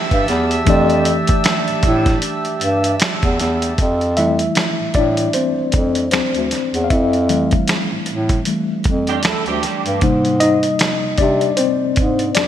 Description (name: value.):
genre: R&B, neo-soul.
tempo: 77 BPM.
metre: 4/4.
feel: swing 58% on 16ths.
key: F major.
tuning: A4 = 439 Hz.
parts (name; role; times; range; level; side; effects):
mellow tine electric piano; accompaniment; 0.0-12.5 s; C3 to F5; -19 LUFS; left 2 dB; medium stereo tremolo.
chorused pulse-width pad; sustained chords; 0.0-3.7 s; G4 to E6; -23 LUFS; right 3 dB; none.
mellow bass clarinet; bass; 0.1-12.5 s; D2 to C3; -18 LUFS; equal; none.
dusty soul sampler-style drum kit; drums; 0.1-12.5 s; finger snaps, hi-hat, kick drum, snare drum; -19 LUFS; right 1 dB; none.
electric guitar through a small old amp; second line; 9.1-10.0 s; D4 to A4; -24 LUFS; right 7 dB; ensemble chorus.
room: moderate lush hall reverb, RT60 2.9 s.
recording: bright 1980s-style digital production.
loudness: -14 LUFS.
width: side -10 dB against mid.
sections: 0.0-3.8 A section; 3.8-12.5 B section.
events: tine electric piano solo 3.8-12.5.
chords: 0.0 Fmaj9; 10.0 Abmaj9.